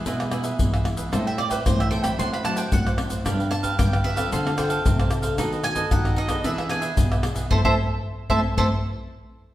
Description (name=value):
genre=samba and choro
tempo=113 BPM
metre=4/4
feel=straight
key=A minor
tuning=A4 = 439 Hz
part: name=bowl-back mandolin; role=melody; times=0.0-8.7 s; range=B4 to C6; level=-27 LUFS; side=right 2 dB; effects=none
part: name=cavaquinho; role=accompaniment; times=0.0-8.7 s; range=D4 to G5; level=-30 LUFS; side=right 3 dB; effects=none
part: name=nylon-string guitar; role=accompaniment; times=0.0-8.7 s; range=G2 to A4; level=-30 LUFS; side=left 2 dB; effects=none
part: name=nylon-string guitar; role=bass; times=0.1-8.7 s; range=G2 to E3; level=-29 LUFS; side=right 1 dB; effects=none
part: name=tube shaker, surdo, pandeiro and tamborim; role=percussion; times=0.1-8.7 s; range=none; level=-23 LUFS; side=left 1 dB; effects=none
room=wet stone room reverb, RT60 1.3 s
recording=band playing live in one room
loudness=-20 LUFS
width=side -14 dB against mid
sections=0.0-9.5 A section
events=mandolin solo 0.0-9.5; band accent 7.5-9.5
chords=0.0 E; 1.1 Am7; 2.2 D7/A; 3.3 G7; 4.3 Dm7; 5.4 B7/D#; 6.5 E7; 7.5 Am